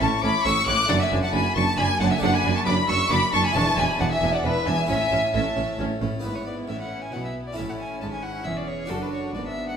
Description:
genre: classical, baroque-style concerto movement with solo episodes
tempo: 135 BPM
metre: 3/4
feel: straight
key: A major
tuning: A4 = 440 Hz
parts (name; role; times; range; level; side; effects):
- clear violin; melody; 0.0-9.8 s; A4 to D6; -28 LUFS; left 1 dB; none
- rich chamber violin section; melody; 0.0-9.8 s; A4 to F#6; -29 LUFS; left 4 dB; none
- rich chamber violin section; second line; 0.0-9.8 s; D4 to D6; -28 LUFS; equal; none
- harpsichord; accompaniment; 0.0-9.8 s; E2 to D5; -31 LUFS; left 1 dB; none
- rich chamber viola section; accompaniment; 0.0-9.8 s; B3 to D4; -31 LUFS; right 2 dB; none
- clear chamber double bass section; bass; 0.0-9.8 s; E1 to B1; -29 LUFS; right 4 dB; none
- rich studio cello section; bass; 0.0-9.8 s; E2 to B2; -29 LUFS; right 3 dB; none
room: wet recital hall reverb, RT60 1.5 s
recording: minimal, uncompressed stereo recording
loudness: -21 LUFS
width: side -7 dB against mid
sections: 0.0-6.2 A section; 6.2-9.8 B section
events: none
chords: 0.0 A; 0.9 D/F#; 3.6 E7; 4.9 A; 6.2 E/G#; 7.6 A; 8.9 D/F#

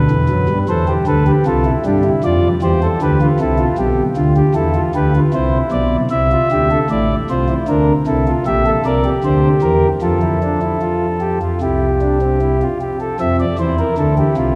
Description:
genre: classical, baroque-style 3-part fugue for pipe organ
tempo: 77 BPM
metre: 4/4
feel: straight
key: C major, F major from 6.9 s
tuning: A4 = 440 Hz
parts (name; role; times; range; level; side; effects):
- chamber organ, principal; solo; 0.0-14.6 s; A1 to E5; -16 LUFS; equal; none
room: wet church reverb, RT60 3.5 s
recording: none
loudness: -16 LUFS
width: mono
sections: 0.0-6.9 A section; 6.9-13.2 B section; 13.2-14.6 C section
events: none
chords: 0.0 G; 0.7 C; 3.8 G7/B; 5.3 C; 6.9 Am; 8.5 Gm/Bb; 10.0 Fmaj7; 11.6 C; 13.2 F5

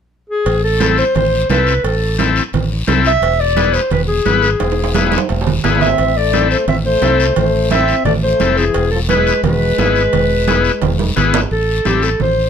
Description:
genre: latin, cumbia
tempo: 174 BPM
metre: 4/4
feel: straight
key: A harmonic minor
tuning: A4 = 440 Hz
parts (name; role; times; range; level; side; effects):
- mellow clarinet; melody; 0.3-12.5 s; G4 to E5; -16 LUFS; equal; none
- fingered electric bass; bass; 0.5-12.5 s; E1 to C2; -18 LUFS; equal; none
- congas; percussion; 0.5-12.4 s; none; -20 LUFS; right 8 dB; none
- cowbell and timbales; percussion; 0.5-11.4 s; none; -25 LUFS; right 6 dB; none
- guiro; percussion; 0.5-12.5 s; none; -27 LUFS; left 5 dB; none
- overdriven combo organ; accompaniment; 0.8-12.1 s; B3 to B4; -17 LUFS; left 6 dB; none
- breathy trombone; second line; 5.8-11.1 s; E3 to C4; -22 LUFS; left 8 dB; none
room: light reverb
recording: close, detailed microphones, faint mains hum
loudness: -12 LUFS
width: side -7 dB against mid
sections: 0.5-11.5 A section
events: drum fill 4.6-6.0, 10.8-11.5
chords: 0.5 Am; 3.2 E; 6.0 Am; 8.8 E; 11.5 Am

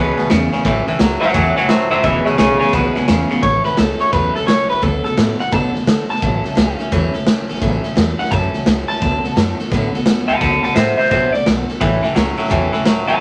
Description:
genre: rockabilly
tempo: 172 BPM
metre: 4/4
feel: swing 64% on 8ths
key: A major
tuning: A4 = 439 Hz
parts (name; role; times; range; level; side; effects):
- electric guitar through a small old amp; melody; 0.0-13.2 s; G#4 to A5; -20 LUFS; equal; none
- picked steel-string acoustic guitar; accompaniment; 0.0-13.2 s; A2 to A4; -26 LUFS; equal; none
- twangy electric guitar; riff; 0.0-3.4, 11.8-13.2 s; E2 to F#3; -21 LUFS; equal; none
- upright bass; bass; 0.0-13.2 s; E1 to D3; -25 LUFS; equal; none
- raw garage drum kit; drums; 0.2-13.1 s; hi-hat, kick drum, snare drum; -20 LUFS; equal; none
room: light reverb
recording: none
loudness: -16 LUFS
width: mono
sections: 0.0-3.4 A section; 3.4-13.2 B section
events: clean electric guitar solo 0.0-3.4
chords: 0.0 E6; 0.6 A6; 2.0 E6; 3.4 A6; 4.8 D6; 6.2 A6; 9.0 D6; 11.8 A6

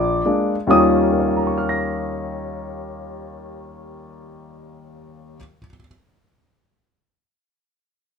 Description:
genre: solo jazz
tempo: 140 BPM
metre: 4/4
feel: swing 65% on 8ths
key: Eb mixolydian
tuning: A4 = 440 Hz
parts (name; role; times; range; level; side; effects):
- warm grand piano; solo; 0.0-5.8 s; Bb1 to Bb6; -18 LUFS; left 1 dB; none
room: moderate studio reverb, RT60 0.7 s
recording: minimal, uncompressed stereo recording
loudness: -17 LUFS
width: side -6 dB against mid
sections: 0.7-4.1 A section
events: none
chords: 0.0 Bb7; 0.7 Eb9

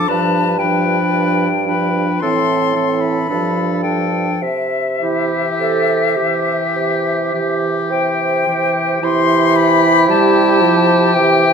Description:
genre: classical, slow romantic movement for wind quintet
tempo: 50-59 BPM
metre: 4/4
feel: rubato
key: C major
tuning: A4 = 440 Hz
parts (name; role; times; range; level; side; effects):
- bright silver concert flute; melody; 0.0-11.5 s; E5 to C6; -18 LUFS; left 8 dB; none
- clear oboe; second line; 0.0-11.5 s; G4 to B4; -21 LUFS; left 1 dB; none
- bright clarinet; accompaniment; 0.0-11.5 s; C4 to C5; -20 LUFS; right 8 dB; none
- mellow French horn; accompaniment; 0.0-11.5 s; E3 to G3; -21 LUFS; right 1 dB; none
- mellow bassoon; bass; 0.1-11.5 s; G2 to C3; -20 LUFS; right 2 dB; none
room: moderate recital hall reverb, RT60 1.4 s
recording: minimal, uncompressed stereo recording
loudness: -13 LUFS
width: side -6 dB against mid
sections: 0.0-9.0 A section; 9.0-11.5 B section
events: none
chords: 0.1 G7; 2.2 Am; 3.3 G9; 4.4 C

